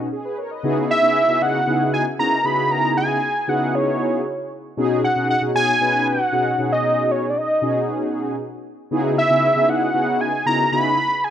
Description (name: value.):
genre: funk.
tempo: 116 BPM.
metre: 4/4.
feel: straight.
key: unclear.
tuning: A4 = 440 Hz.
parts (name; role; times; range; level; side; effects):
mellow synth brass; accompaniment; 0.0-11.0 s; B2 to D#5; -22 LUFS; left 1 dB; chorus.
fat analog lead; melody; 0.9-11.3 s; C#5 to B5; -18 LUFS; right 1 dB; chorus, slapback echo.
room: moderate lush hall reverb, RT60 2.2 s.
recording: rough home demo mix.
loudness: -17 LUFS.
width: side -10 dB against mid.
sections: 0.0-11.3 A section.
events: none.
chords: 0.0 B69; 0.6 C#m11; 4.8 B69; 8.9 C#m11.